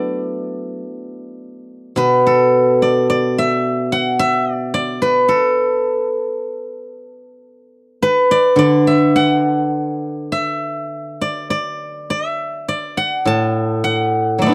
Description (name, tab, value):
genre	chinese traditional, Chinese solo plucked strings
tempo	50-57 BPM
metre	2/4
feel	rubato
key	D gong mode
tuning	A4 = 443 Hz
part	steel-string zither	solo	0.0-14.5 s	A2 to A5	-18 LUFS	equal	none
room	light reverb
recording	dry, close 1970s-style studio recording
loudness	-17 LUFS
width	mono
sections	0.0-2.0 A section; 2.0-14.5 B section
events	none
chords	none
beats	0.82 | 1.98 3.13 | 4.22 5.29 | 6.36 7.45 | 8.57 9.72 | 10.89 12.08 | 13.26 14.40